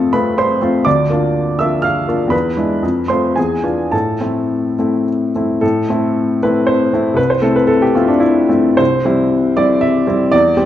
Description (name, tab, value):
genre	classical, romantic character piece for solo piano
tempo	98-127 BPM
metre	3/4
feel	rubato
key	A minor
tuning	A4 = 440 Hz
part	clear upright piano	solo	0.0-10.7 s	C2 to F6	-12 LUFS	equal	none
room	moderate recital hall reverb, RT60 1.7 s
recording	dark, warm production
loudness	-12 LUFS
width	side -11 dB against mid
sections	0.0-5.6 A section; 5.6-10.7 A section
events	none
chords	0.0 F; 0.9 Bb/D; 2.3 E7; 2.8 F; 3.4 E7b9; 3.9 Am; 7.2 Am/C; 8.8 C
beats	0.38 | 0.86 1.35 1.84 | 2.32 2.83 3.36 | 3.92 4.50 5.06 | 5.62 6.16 6.68 | 7.17 7.69 8.21 | 8.79 9.32 9.83 | 10.32